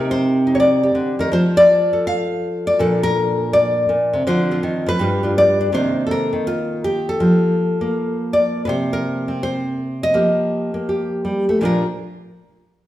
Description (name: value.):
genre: solo jazz.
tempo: 163 BPM.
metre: 4/4.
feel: swing 65% on 8ths.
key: Bb major.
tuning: A4 = 443 Hz.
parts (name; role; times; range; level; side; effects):
nylon-string guitar; solo; 0.0-11.9 s; G2 to F5; -16 LUFS; equal; none.
room: wet large studio reverb, RT60 1.3 s.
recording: band playing live in one room.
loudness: -16 LUFS.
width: side -14 dB against mid.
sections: 0.0-5.7 A section; 5.7-11.6 B section; 11.6-12.9 C section.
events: none.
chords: 0.0 Cm9; 1.3 F6; 2.8 Bbmaj7; 4.2 Dm7; 5.0 G7; 5.7 Cm11; 7.2 Fsus4; 8.7 C7sus4; 10.1 F9sus4; 11.6 Bb.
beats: 0.22 0.59 0.95 | 1.32 1.69 2.05 2.42 | 2.78 3.15 3.52 3.88 | 4.25 4.61 4.98 5.35 | 5.71 6.08 6.45 6.82 | 7.19 7.55 7.92 8.29 | 8.66 9.03 9.40 9.77 | 10.14 10.51 10.87 11.24 | 11.61.